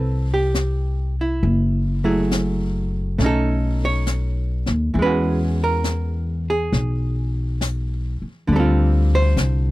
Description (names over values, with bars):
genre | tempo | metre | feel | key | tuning
jazz ballad | 68 BPM | 4/4 | swing 68% on 8ths | unclear | A4 = 439 Hz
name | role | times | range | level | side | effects
archtop guitar, miked and amplified | accompaniment | 0.0-9.7 s | D3 to C#5 | -22 LUFS | right 2 dB | none
upright bass | bass | 0.0-9.7 s | F#1 to E2 | -20 LUFS | left 1 dB | none
jazz brush drum kit | drums | 0.5-9.7 s | brushed snare drum, hi-hat, snare drum | -29 LUFS | left 3 dB | none
room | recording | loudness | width
little or no reverb | dry, close 1970s-style studio recording | -18 LUFS | side -18 dB against mid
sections
0.0-9.7 A section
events
none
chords
0.0 Am9; 1.4 F#m9; 3.2 B9; 5.0 E69; 8.5 Dm7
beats
0.55 | 1.43 2.31 3.19 4.08 | 4.96 5.85 6.73 7.61 | 8.49 9.37